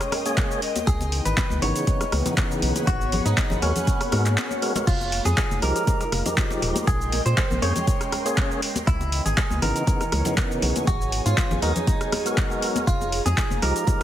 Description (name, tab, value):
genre	deep house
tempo	120 BPM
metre	4/4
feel	swing 53% on 16ths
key	unclear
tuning	A4 = 440 Hz
part	direct-recorded clean electric guitar	melody	0.0-14.0 s	Db4 to Db5	-29 LUFS	right 1 dB	lush chorus, dub echo
part	dark analog pad	sustained chords	0.0-14.0 s	Fb3 to C6	-35 LUFS	left 1 dB	chorus, vintage 12-bit sampler grit, sidechain pumping
part	deep house drum kit	drums	0.0-14.0 s	cabasa, crash cymbal, handclaps, hi-hat, rim click	-28 LUFS	equal	small room ambience
part	ethereal airy pad	texture	0.0-14.0 s	Ab4 to Db6	-32 LUFS	right 2 dB	ensemble chorus, built-in reverb, phaser, sidechain pumping
part	congas	percussion	0.1-14.0 s	none	-31 LUFS	left 3 dB	none
part	tonewheel organ	stabs	0.3-14.0 s	Db3 to Db5	-29 LUFS	equal	overdrive, fast rotary speaker, vintage 12-bit sampler grit, sidechain pumping, dub echo
part	electronic kick drum	drums	0.4-14.0 s	none	-24 LUFS	equal	small room ambience
part	organ-like FM bass	bass	0.9-13.7 s	Eb1 to Bb2	-24 LUFS	equal	sidechain pumping
room	light reverb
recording	heavily compressed radio sound, multiband compression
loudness	-20 LUFS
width	side -11 dB against mid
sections	0.0-14.0 A section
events	break 4.4-4.9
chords	0.0 Bbm9; 0.6 Dbm9; 2.9 Abm9; 4.9 Fm9; 6.9 Bbm9; 8.6 Dbm9; 10.9 Abm9; 12.9 Fm9